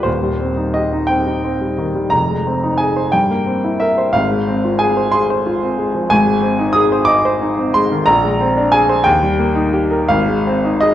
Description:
classical, romantic character piece for solo piano; 60 BPM (dotted quarters); 6/8; uneven beats, rubato; A4 = 440 Hz
clear grand piano; solo; 0.0-10.9 s; Eb1 to Eb6; -13 LUFS; equal
moderate recital hall reverb, RT60 1.3 s; worn, warbling old tape, cassette tape, warbly pitch drift; -13 LUFS; side -12 dB against mid
0.0-10.9 A section
0.1 Cm/Eb; 2.1 Fm7; 3.1 C7/G; 4.1 Fm/Ab; 6.1 Ab; 8.1 Bb9; 9.1 Eb; 10.1 Ab6

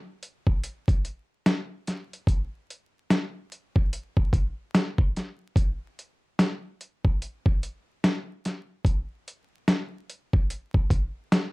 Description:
hip hop; 73 BPM; 4/4; swing 62% on 16ths
dusty soul sampler-style drum kit; drums; 0.2-11.5 s; hi-hat, kick drum, snare drum; -23 LUFS; equal; overdrive
light reverb; dark, warm production, vinyl crackle; -25 LUFS; side -24 dB against mid
0.0-11.5 A section

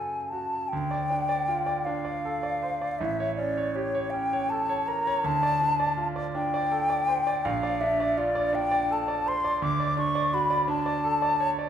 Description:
classical, romantic duo for flute and grand piano; 54 BPM (dotted quarters); 6/8; uneven beats, rubato; D minor; A4 = 440 Hz
mellow hollow silver concert flute; melody; 0.0-11.5 s; C#5 to D6; -26 LUFS; left 2 dB
bright grand piano; accompaniment; 0.0-11.7 s; A1 to D5; -30 LUFS; right 3 dB
moderate recital hall reverb, RT60 1.3 s; minimal, uncompressed stereo recording; -24 LUFS; side -9 dB against mid
0.7-11.7 A section
0.0 F#m; 0.7 Dm; 3.0 A7; 5.2 Dm; 7.4 Bbmaj7; 9.6 D

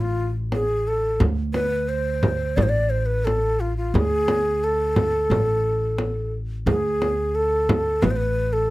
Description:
Arabic maqam ensemble; 88 BPM; 4/4; straight; A4 = 440 Hz
breathy ney; melody; 0.0-8.7 s; F4 to D5; -22 LUFS; equal
upright bass; bass; 0.0-8.7 s; A1 to D2; -25 LUFS; equal
frame drum; percussion; 0.5-8.2 s; -23 LUFS; equal
little or no reverb; -20 LUFS; side -18 dB against mid
0.0-8.7 A section

